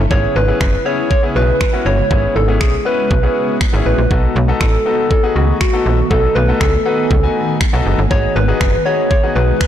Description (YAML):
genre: dance-pop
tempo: 120 BPM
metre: 4/4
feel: straight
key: unclear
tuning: A4 = 440 Hz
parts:
  - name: ethereal airy pad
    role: sustained chords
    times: 0.0-9.7 s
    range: C#3 to G#5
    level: -23 LUFS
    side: right 1 dB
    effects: ensemble chorus, built-in reverb, tremolo, sidechain pumping
  - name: slap-like FM bass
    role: bass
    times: 0.0-9.5 s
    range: F#1 to C#2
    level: -15 LUFS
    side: equal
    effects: sidechain pumping
  - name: soft struck synth lead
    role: melody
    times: 0.1-9.7 s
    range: F#4 to C#5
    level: -18 LUFS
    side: equal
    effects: chorus, digital delay
  - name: clear concert grand piano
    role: accompaniment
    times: 0.1-9.6 s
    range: B3 to G#5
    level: -21 LUFS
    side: left 5 dB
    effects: sidechain pumping
  - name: pop drum kit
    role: drums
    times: 0.1-9.7 s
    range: finger snaps, kick drum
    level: -17 LUFS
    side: equal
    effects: soft clipping on snare
room: light reverb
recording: blown-out, overdriven recording, overdrive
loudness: -12 LUFS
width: side -10 dB against mid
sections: 0.0-9.7 A section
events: none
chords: 0.1 E6; 4.1 B7; 8.1 G#m7